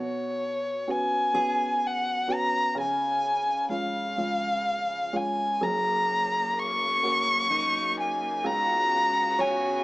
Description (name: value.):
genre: acoustic folk-pop ballad.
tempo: 42 BPM (dotted quarters).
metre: 6/8.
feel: straight.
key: F# major.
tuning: A4 = 440 Hz.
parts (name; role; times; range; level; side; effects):
dark violin; melody; 0.0-9.8 s; C#5 to C#6; -25 LUFS; left 1 dB; none.
warm upright piano; accompaniment; 0.0-9.8 s; F#1 to F#4; -33 LUFS; right 2 dB; none.
picked steel-string acoustic guitar; arpeggios; 0.0-3.2, 7.5-9.8 s; D#4 to C#5; -33 LUFS; right 2 dB; none.
bright studio string section; sustained chords; 5.6-9.8 s; F#2 to F#4; -36 LUFS; left 1 dB; none.
room: moderate studio ambience, RT60 0.5 s.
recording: small speaker sound.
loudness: -24 LUFS.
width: side -18 dB against mid.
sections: 0.0-5.6 A section; 5.6-9.8 B section.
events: none.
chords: 0.0 Bsus2; 2.8 C#; 5.6 F#; 8.4 C#7sus4.